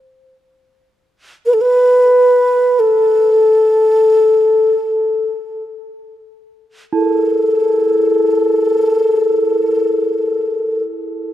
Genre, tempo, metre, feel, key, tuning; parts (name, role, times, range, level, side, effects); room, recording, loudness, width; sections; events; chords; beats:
world meditative, free-time meditation music; free time; A4 = 441 Hz
mellow low xiao; melody; 1.5-10.8 s; A4 to B4; -12 LUFS; left 1 dB; analog delay
bronze singing bowl; texture; 6.9-10.8 s; E4; -22 LUFS; right 8 dB
light reverb, studio ambience; echo-heavy mix; -11 LUFS; side -12 dB against mid
0.0-6.9 A section; 6.9-11.0 B section
free time